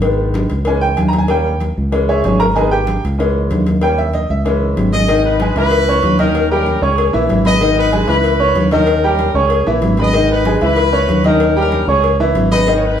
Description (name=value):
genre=latin, salsa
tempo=190 BPM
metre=4/4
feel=straight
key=unclear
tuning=A4 = 440 Hz
part: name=bright upright piano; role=accompaniment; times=0.0-12.9 s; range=D#3 to C#6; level=-16 LUFS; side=right 1 dB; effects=none
part: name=fingered electric bass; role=bass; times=0.0-13.0 s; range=G#1 to D#2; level=-18 LUFS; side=equal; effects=none
part: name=congas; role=percussion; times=0.0-13.0 s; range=none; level=-20 LUFS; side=equal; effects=none
part: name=cowbell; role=percussion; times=0.0-12.8 s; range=none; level=-21 LUFS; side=left 5 dB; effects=none
part: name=brilliant horn section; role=melody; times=4.9-13.0 s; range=C#4 to D#5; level=-18 LUFS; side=left 2 dB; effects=none
room=wet large studio reverb, RT60 1.1 s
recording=band playing live in one room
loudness=-12 LUFS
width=side -9 dB against mid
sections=0.0-5.1 A section; 5.1-13.0 B section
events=upright piano solo 0.0-5.1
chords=0.0 G#m; 0.7 C#m; 1.3 D#7; 1.9 C#m; 2.6 G#m; 3.2 C#m; 3.8 D#7; 4.5 C#m; 5.1 G#m; 5.7 C#m; 6.4 D#7; 7.0 C#m; 7.6 G#m; 8.2 C#m; 8.9 D#7; 9.5 C#m; 10.1 G#m; 10.8 C#m; 11.4 D#7; 12.0 C#m